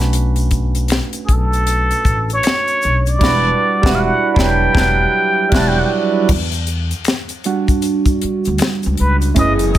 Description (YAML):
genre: R&B, neo-soul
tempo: 78 BPM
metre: 4/4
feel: swing 62% on 16ths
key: unclear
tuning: A4 = 440 Hz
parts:
  - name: barky tine electric piano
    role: accompaniment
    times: 0.0-9.8 s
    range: F#3 to B4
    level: -19 LUFS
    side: right 5 dB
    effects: overdrive, phaser, plate reverb
  - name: upright bass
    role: bass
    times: 0.0-9.8 s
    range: E1 to E2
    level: -18 LUFS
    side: left 1 dB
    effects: none
  - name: tight funk drum kit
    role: drums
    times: 0.0-9.8 s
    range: crash cymbal, hi-hat, kick drum, snare drum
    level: -18 LUFS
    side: left 1 dB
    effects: none
  - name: egg shaker and finger snaps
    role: percussion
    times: 0.1-9.8 s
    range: none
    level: -31 LUFS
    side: left 4 dB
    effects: none
  - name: trumpet with plunger mute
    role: melody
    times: 1.3-9.8 s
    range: G#4 to A5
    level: -17 LUFS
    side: equal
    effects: slapback echo, plate reverb
  - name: warm studio string section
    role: sustained chords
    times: 9.4-9.8 s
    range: E3 to G#4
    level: -22 LUFS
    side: left 5 dB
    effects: none
room: light reverb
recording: none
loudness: -13 LUFS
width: side -13 dB against mid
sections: 0.0-6.3 A section; 6.3-9.4 B section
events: band accent 3.2-6.3; tine electric piano solo 6.3-9.4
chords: 0.0 Bm9; 3.2 Em9